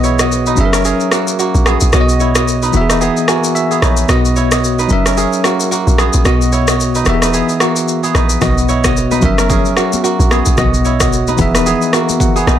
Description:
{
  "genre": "afrobeats",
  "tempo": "111 BPM",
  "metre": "4/4",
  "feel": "swing 58% on 16ths",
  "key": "B major",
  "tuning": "A4 = 442 Hz",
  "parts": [
    { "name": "bell-like tine electric piano", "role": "accompaniment", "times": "0.0-12.6 s", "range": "B2 to A#5", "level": "-16 LUFS", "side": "left 2 dB", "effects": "medium stereo tremolo" },
    { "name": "kora", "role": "riff", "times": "0.0-12.6 s", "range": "A#3 to D#5", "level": "-18 LUFS", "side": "right 7 dB", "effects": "digital delay" },
    { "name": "deep log drum bass", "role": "bass", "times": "0.0-12.6 s", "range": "E1 to B1", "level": "-15 LUFS", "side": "equal", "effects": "none" },
    { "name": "afro-pop drum kit", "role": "drums", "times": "0.0-12.6 s", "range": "kick drum, rim click, shaker", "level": "-16 LUFS", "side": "left 1 dB", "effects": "overdrive" },
    { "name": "congas", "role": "percussion", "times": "8.4-12.6 s", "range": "none", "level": "-23 LUFS", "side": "left 8 dB", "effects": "none" }
  ],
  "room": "digital ambience",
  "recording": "none",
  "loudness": "-10 LUFS",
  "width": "side -10 dB against mid",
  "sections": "0.0-12.6 A section",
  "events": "break 0.0-8.4; tine electric piano fill 3.0-4.1",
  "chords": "0.0 B; 0.6 F#7; 1.9 B; 2.7 E; 4.1 B; 4.9 F#7; 6.3 B; 7.1 E; 8.4 B; 9.2 F#7; 10.6 B; 11.4 E",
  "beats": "0.31 0.85 1.39 | 1.93 2.47 3.01 3.55 | 4.09 4.63 5.17 5.71 | 6.25 6.79 7.33 7.88 | 8.42 8.96 9.50 10.04 | 10.58 11.12 11.66 12.20"
}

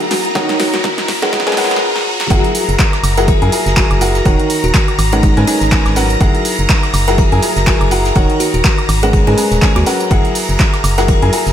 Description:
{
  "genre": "piano house",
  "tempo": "123 BPM",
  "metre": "4/4",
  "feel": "swing 57% on 16ths",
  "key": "F# mixolydian",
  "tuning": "A4 = 442 Hz",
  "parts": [
    { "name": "buzzing kalimba", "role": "melody", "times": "0.0-11.2 s", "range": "D#4 to A#4", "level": "-20 LUFS", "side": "left 3 dB", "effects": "diffuse ambient delay" },
    { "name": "string machine, violins", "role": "sustained chords", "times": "0.0-11.5 s", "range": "A#5", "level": "-23 LUFS", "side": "equal", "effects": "ensemble chorus, sidechain pumping" },
    { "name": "clear upright piano", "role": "riff", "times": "0.0-11.5 s", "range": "D#3 to G#5", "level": "-17 LUFS", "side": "equal", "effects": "sidechain pumping, diffuse ambient delay" },
    { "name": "organ-like FM bass", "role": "bass", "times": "0.0-11.5 s", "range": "D#1 to G#2", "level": "-16 LUFS", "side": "equal", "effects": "sidechain pumping, high-pass filter" },
    { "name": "punchy analog drum machine", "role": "drums", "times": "0.0-11.5 s", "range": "handclaps, hi-hat, snare drum, tambourine, woodblock", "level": "-20 LUFS", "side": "right 1 dB", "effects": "overdrive" },
    { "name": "riser", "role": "sound effects", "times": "0.0-2.3 s", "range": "none", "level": "-22 LUFS", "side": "left 1 dB", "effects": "none" },
    { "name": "electronic kick drum", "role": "drums", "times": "0.4-11.2 s", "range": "none", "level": "-14 LUFS", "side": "equal", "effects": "overdrive" },
    { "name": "soft brush drum kit", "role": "drums", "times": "2.3-11.5 s", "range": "hi-hat, ride cymbal, snare drum", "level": "-25 LUFS", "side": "left 1 dB", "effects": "sidechain pumping on cymbals, high-pass filter on cymbals, sidechain pumping on hats, high-pass filter on hats, high-pass filter on snare, high-pass filter on room" }
  ],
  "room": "moderate lush hall reverb, RT60 1.9 s, studio ambience",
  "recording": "dreamy mix soaked in reverb, high-pass filter",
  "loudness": "-11 LUFS",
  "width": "side -10 dB against mid",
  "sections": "0.0-2.3 A section; 2.3-11.5 B section",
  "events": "build-up 0.0-2.3; drum fill 0.0-1.8, 1.9-2.3; riser 0.0-2.3; filter sweep on kalimba 0.0-2.3; break 1.8-2.3; drop 2.3-11.5",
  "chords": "0.4 D#m7; 1.1 G#m11; 2.3 F#9; 4.3 D#m7; 5.0 G#m11; 6.2 F#9; 8.2 D#m7; 8.9 G#m11; 10.1 F#9",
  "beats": "| 0.35 0.84 1.33 1.82 | 2.30 2.79 3.28 3.77 | 4.25 4.74 5.23 5.72 | 6.21 6.69 7.18 7.67 | 8.16 8.65 9.13 9.62 | 10.11 10.60 11.09"
}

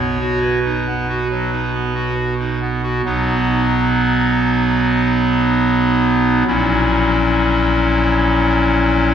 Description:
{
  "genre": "classical, chorale-style piece for pipe organ",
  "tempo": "70 BPM",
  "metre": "4/4",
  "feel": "straight",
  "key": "B major",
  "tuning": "A4 = 440 Hz",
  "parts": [
    { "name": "pipe organ, clarinet reed", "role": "solo", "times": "0.0-9.1 s", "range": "A#1 to C#5", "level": "-14 LUFS", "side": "equal", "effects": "none" }
  ],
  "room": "wet church reverb, RT60 2.8 s",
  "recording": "heard from further back in the room",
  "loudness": "-14 LUFS",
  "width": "side -8 dB against mid",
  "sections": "0.0-3.0 A section; 3.0-9.1 B section",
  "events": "none",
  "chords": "0.0 B; 6.5 F#7/A#",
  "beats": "0.41 1.29 2.17 | 3.05 3.91 4.76 5.62 | 6.47 7.32 8.18 9.02"
}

